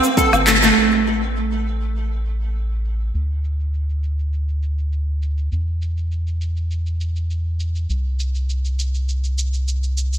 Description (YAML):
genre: organic downtempo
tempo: 101 BPM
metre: 4/4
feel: straight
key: A minor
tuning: A4 = 440 Hz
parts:
  - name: flamenco guitar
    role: arpeggios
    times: 0.0-0.8 s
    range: A3 to A4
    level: -17 LUFS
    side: right 2 dB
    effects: ensemble chorus, ping-pong delay
  - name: electronic shaker, woodblock and handclaps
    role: drums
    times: 0.0-10.2 s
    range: none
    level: -20 LUFS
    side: equal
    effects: low-pass filter on perc, studio reverb, low-pass filter on snare
  - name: round analog bass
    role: bass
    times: 0.3-10.2 s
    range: G1 to E2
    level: -21 LUFS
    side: equal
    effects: sidechain pumping
room: wet lush hall reverb, RT60 2.1 s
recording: dreamy mix soaked in reverb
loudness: -18 LUFS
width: side -10 dB against mid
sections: 0.8-10.2 A section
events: band accent 0.5; filter sweep on drum 0.8-10.2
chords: none